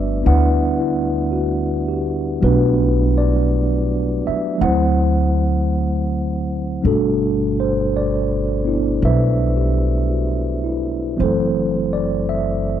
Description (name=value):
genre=jazz ballad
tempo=55 BPM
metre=4/4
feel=swing 69% on 8ths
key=G major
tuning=A4 = 439 Hz
part: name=mellow tine electric piano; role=accompaniment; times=0.0-12.8 s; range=B2 to F#5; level=-19 LUFS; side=equal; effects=medium stereo tremolo
part: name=upright bass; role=bass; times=0.0-12.8 s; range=F#1 to D2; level=-20 LUFS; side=equal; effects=none
room=studio ambience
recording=dry, close 1970s-style studio recording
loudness=-16 LUFS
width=side -10 dB against mid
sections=0.0-6.8 A section; 6.8-12.8 A section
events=none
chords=0.0 Gmaj9; 4.6 D7; 6.8 Gmaj9; 11.2 F#m7b5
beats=0.24 1.33 | 2.42 3.50 4.61 5.72 | 6.82 7.91 9.00 10.10 | 11.18 12.27